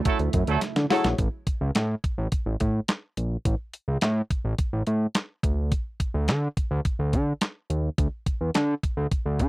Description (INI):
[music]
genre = early-eighties boogie funk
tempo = 106 BPM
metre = 4/4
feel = straight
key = unclear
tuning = A4 = 438 Hz
[part]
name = chorused pulse-width pad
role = sustained chords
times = 0.0-1.2 s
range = C#3 to E4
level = -33 LUFS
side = right 8 dB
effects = none
[part]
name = clear horn section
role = second line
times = 0.1-1.1 s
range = F#3 to A4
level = -25 LUFS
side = right 7 dB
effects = none
[part]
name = detuned 8-bit digital drum machine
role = drums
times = 0.1-9.5 s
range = handclaps, hi-hat, kick drum, snare drum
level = -26 LUFS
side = equal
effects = none
[part]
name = fat analog bass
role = bass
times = 0.2-9.5 s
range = A1 to D3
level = -24 LUFS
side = equal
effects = none
[part]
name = warm baby grand piano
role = accompaniment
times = 0.9-1.1 s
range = E4 to C#5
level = -24 LUFS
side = left 6 dB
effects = none
[sound]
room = little or no reverb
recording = dry, close 1970s-style studio recording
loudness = -24 LUFS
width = side -19 dB against mid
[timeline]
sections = 0.0-1.2 A section; 1.2-9.5 B section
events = band accent 0.0-1.2; drum fill 0.6-1.2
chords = 0.0 Dmaj9#11; 1.2 N.C.